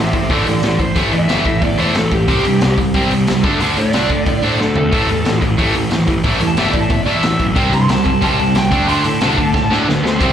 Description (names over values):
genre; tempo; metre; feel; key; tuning
punk rock; 182 BPM; 4/4; straight; A minor; A4 = 440 Hz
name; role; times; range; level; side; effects
bluesy overdriven lead guitar; melody; 0.0-10.3 s; B3 to C6; -20 LUFS; right 1 dB; distortion, slapback echo, digital delay
distorted electric guitar; riff; 0.0-10.3 s; A2 to D4; -16 LUFS; equal; overdrive
fuzz picked electric bass; bass; 0.0-10.3 s; G1 to D3; -20 LUFS; equal; overdrive
raw garage drum kit; drums; 0.1-10.3 s; crash cymbal, hi-hat, kick drum, snare drum, toms; -19 LUFS; equal; none
room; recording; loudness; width
studio ambience; live gig heard through the venue's PA, club reverb; -12 LUFS; side -9 dB against mid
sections
0.0-10.2 A section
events
lead electric guitar solo 0.0-10.2; drum fill 4.6-4.9, 9.5-10.2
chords
0.0 Am; 2.3 C5; 3.4 D5; 4.9 A5; 7.6 C5; 8.7 D5